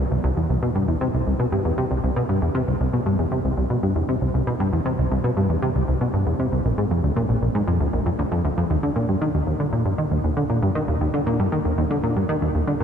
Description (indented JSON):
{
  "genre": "ambient",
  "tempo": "117 BPM",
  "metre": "4/4",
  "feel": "straight",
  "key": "C major, Eb major from 8.7 s",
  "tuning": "A4 = 440 Hz",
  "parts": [
    { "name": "plucky analog bass", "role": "solo", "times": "0.0-12.8 s", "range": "Bb1 to Eb3", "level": "-20 LUFS", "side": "equal", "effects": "wide subtle chorus, analog delay" }
  ],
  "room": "wet cathedral reverb, RT60 6.3 s",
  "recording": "in a vast, echoing space",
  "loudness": "-20 LUFS",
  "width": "side -8 dB against mid",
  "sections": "0.0-8.7 A section; 8.7-12.8 B section",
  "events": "none",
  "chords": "none",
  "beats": "| 0.50 1.01 1.52 2.03 | 2.55 3.06 3.57 4.09 | 4.60 5.11 5.62 6.14 | 6.65 7.16 7.68 8.19 | 8.70 9.21 9.73 10.24 | 10.75 11.27 11.78 12.29 | 12.80"
}